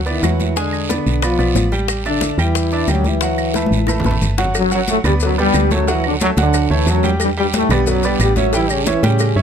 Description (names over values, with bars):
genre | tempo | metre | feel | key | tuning
latin, salsa | 181 BPM | 4/4 | straight | D major | A4 = 440 Hz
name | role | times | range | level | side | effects
woody FM bass | bass | 0.0-9.4 s | G1 to A2 | -19 LUFS | equal | none
warm trombone section | melody | 0.1-9.4 s | F#2 to F4 | -18 LUFS | left 1 dB | none
bright concert grand piano | accompaniment | 0.1-9.4 s | F#3 to G#5 | -22 LUFS | right 3 dB | none
bongos and cowbell | percussion | 0.1-9.4 s | none | -26 LUFS | left 10 dB | none
congas | percussion | 0.1-9.4 s | none | -24 LUFS | left 2 dB | none
maracas | percussion | 0.1-9.4 s | none | -30 LUFS | left 8 dB | none
claves | percussion | 0.2-9.4 s | none | -28 LUFS | right 9 dB | none
guiro | percussion | 0.2-9.4 s | none | -30 LUFS | right 7 dB | none
room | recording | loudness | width
little or no reverb | close, detailed microphones | -14 LUFS | side -8 dB against mid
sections
0.0-4.5 A section; 4.5-9.4 B section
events
drum fill 3.6-4.5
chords
0.0 Gmaj7 (rootless); 0.6 E7b9; 1.9 A7sus4; 3.2 D69; 4.5 Gmaj7; 5.9 Dmaj7; 7.2 Em7; 8.5 A7